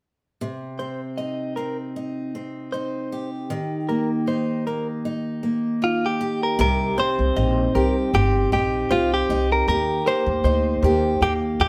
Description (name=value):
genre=acoustic pop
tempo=78 BPM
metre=4/4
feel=swing 55% on 16ths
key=unclear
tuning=A4 = 440 Hz
part: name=picked steel-string acoustic guitar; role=accompaniment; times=0.4-11.7 s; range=C3 to G4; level=-27 LUFS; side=equal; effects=none
part: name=direct-recorded clean electric guitar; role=arpeggios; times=0.8-11.0 s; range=Bb4 to Eb5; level=-32 LUFS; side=equal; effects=none
part: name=direct-recorded clean electric guitar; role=melody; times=5.8-11.7 s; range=F4 to C5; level=-25 LUFS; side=equal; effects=none
part: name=upright bass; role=bass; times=6.6-11.7 s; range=G1 to Eb2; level=-25 LUFS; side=equal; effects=none
room=moderate stone room reverb, RT60 1.0 s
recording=band playing live in one room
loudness=-23 LUFS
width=mono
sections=0.4-6.6 A section; 6.6-11.7 B section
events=none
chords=0.4 Cm; 3.5 Eb; 6.6 Cm; 9.7 Eb